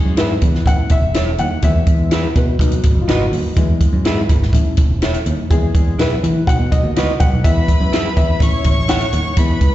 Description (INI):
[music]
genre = uptempo 1960s-style soul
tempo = 124 BPM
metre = 4/4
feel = straight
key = E major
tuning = A4 = 437 Hz
[part]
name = warm upright piano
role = accompaniment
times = 0.0-9.7 s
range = F#3 to F#5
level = -23 LUFS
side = left 4 dB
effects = slapback echo
[part]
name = picked electric bass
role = bass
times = 0.1-9.7 s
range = E1 to E3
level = -18 LUFS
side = equal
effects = none
[part]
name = electric guitar through a small old amp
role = stabs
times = 0.2-9.0 s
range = D#4 to E5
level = -22 LUFS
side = right 4 dB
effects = slapback echo
[part]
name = compact cocktail drum kit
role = drums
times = 0.2-9.7 s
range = hi-hat, kick drum, snare drum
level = -16 LUFS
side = equal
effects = none
[part]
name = congas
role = percussion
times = 0.2-9.7 s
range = none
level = -30 LUFS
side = right 2 dB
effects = none
[part]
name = warm studio violin section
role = second line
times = 7.4-9.7 s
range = B4 to C#6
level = -22 LUFS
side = left 1 dB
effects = slapback echo
[sound]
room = little or no reverb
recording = live gig heard through the venue's PA, recital hall reverb, nothing above 7.9 kHz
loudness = -13 LUFS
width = side -14 dB against mid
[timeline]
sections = 0.0-9.7 A section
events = upright piano solo 0.0-9.7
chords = 0.0 E; 0.7 A; 1.6 E; 2.6 B; 3.6 E; 4.5 A; 5.5 E; 6.5 B; 7.4 E; 8.4 A